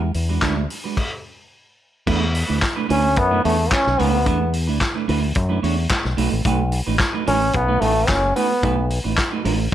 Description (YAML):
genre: disco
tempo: 110 BPM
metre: 4/4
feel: straight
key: unclear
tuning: A4 = 440 Hz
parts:
  - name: clean electric guitar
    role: accompaniment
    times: 0.0-9.7 s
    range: G#3 to C#5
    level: -24 LUFS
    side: right 8 dB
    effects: none
  - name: fingered electric bass with an envelope filter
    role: bass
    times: 0.0-9.7 s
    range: F#1 to F#2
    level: -21 LUFS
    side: left 1 dB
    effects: none
  - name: vintage drum kit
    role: drums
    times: 0.1-9.7 s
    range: crash cymbal, handclaps, hi-hat, kick drum, snare drum, toms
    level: -23 LUFS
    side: left 1 dB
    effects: none
  - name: clear trombone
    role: melody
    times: 2.9-8.9 s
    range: A3 to C#4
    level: -19 LUFS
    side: equal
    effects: slapback echo
room: light reverb, studio reverb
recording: none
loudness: -17 LUFS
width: side -11 dB against mid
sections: 0.0-2.1 A section; 2.1-9.7 B section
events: stop 1.0-2.1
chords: 0.0 E9; 2.1 E7sus4; 6.2 B7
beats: 0.43 0.97 1.52 | 2.07 2.62 3.17 3.72 | 4.26 4.81 5.36 5.90 | 6.45 6.99 7.54 8.09 | 8.63 9.18 9.72